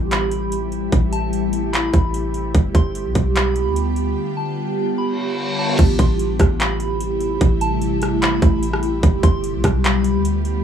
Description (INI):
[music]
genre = hip hop, atmospheric cloud-rap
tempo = 148 BPM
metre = 4/4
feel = half-time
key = A minor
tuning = A4 = 440 Hz
[part]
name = soft synth bell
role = melody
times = 0.0-10.6 s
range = A5 to C6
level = -30 LUFS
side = left 1 dB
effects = chorus, phaser, low-pass filter, digital delay
[part]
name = ethereal airy pad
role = sustained chords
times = 0.0-10.6 s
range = C3 to G4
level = -22 LUFS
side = equal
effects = ensemble chorus, built-in reverb, phaser, sidechain pumping
[part]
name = clean 808-style bass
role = bass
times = 0.0-10.6 s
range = G1 to D2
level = -21 LUFS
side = equal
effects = none
[part]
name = trap drum kit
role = drums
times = 0.1-10.5 s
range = crash cymbal, handclaps, hi-hat, kick drum, rim click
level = -18 LUFS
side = right 1 dB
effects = overdrive
[part]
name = reverse cymbal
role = sound effects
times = 5.1-5.8 s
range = none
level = -24 LUFS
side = equal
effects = none
[sound]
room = little or no reverb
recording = rough home demo mix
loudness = -16 LUFS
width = side -8 dB against mid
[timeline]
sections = 0.0-5.8 A section; 5.8-10.6 B section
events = break 4.2-5.8; reverse cymbal 5.1-5.8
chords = 0.0 Am7; 2.5 G7; 5.8 Am7; 9.0 G7